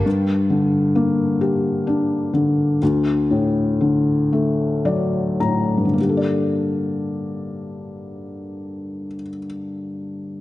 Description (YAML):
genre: pop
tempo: 34-45 BPM (dotted quarters)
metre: 6/8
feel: straight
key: G harmonic minor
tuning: A4 = 441 Hz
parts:
  - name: felt-muted upright piano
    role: accompaniment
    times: 0.0-10.4 s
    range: D2 to Bb5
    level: -18 LUFS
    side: left 1 dB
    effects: none
room: moderate concert hall reverb, RT60 1.8 s, studio reverb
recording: nothing above 10.9 kHz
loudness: -17 LUFS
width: side -16 dB against mid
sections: 0.1-6.0 A section; 6.0-9.5 B section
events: slowing down 0.1-6.0; felt piano fill 4.3-6.0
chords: 0.1 Gm; 2.8 D; 6.0 Gmadd9